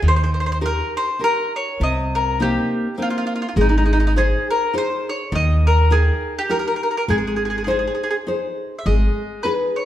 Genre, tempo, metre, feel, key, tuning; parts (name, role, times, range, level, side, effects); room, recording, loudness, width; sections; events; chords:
italian folk, Italian serenade; 102 BPM; 3/4; swing 55% on 8ths; Ab major; A4 = 440 Hz
nylon-string guitar; accompaniment; 0.0-9.9 s; C3 to G5; -23 LUFS; left 1 dB
upright bass; bass; 0.0-9.1 s; Ab1 to Eb2; -18 LUFS; equal
mandolin; melody; 0.1-9.9 s; Eb4 to Fb5; -22 LUFS; equal
moderate stone room reverb, RT60 1.3 s; band playing live in one room; -17 LUFS; side -12 dB against mid
0.0-8.9 A section
0.0 Eb; 1.8 Cm7; 3.6 Ab; 5.3 Eb; 7.1 Ab; 8.9 G#m